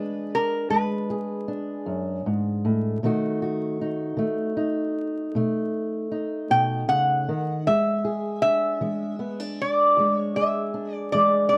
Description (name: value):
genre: acoustic country blues, solo or duo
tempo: 52 BPM (dotted quarters)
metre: 12/8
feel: straight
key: E mixolydian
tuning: A4 = 440 Hz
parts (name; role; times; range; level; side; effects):
- lap resonator guitar; melody; 0.0-11.6 s; A#4 to G5; -24 LUFS; equal; none
- fingerpicked old ladder-braced acoustic guitar; accompaniment; 0.0-11.6 s; E2 to G#4; -28 LUFS; equal; none
room: little or no reverb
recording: dry, close 1970s-style studio recording, vinyl crackle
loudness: -25 LUFS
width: mono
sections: 0.0-7.7 A section; 7.7-11.6 A section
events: none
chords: 0.0 E7; 3.0 B7; 7.7 E7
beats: 0.70 1.86 | 3.02 4.17 5.33 6.50 | 7.66 8.82 9.98 11.14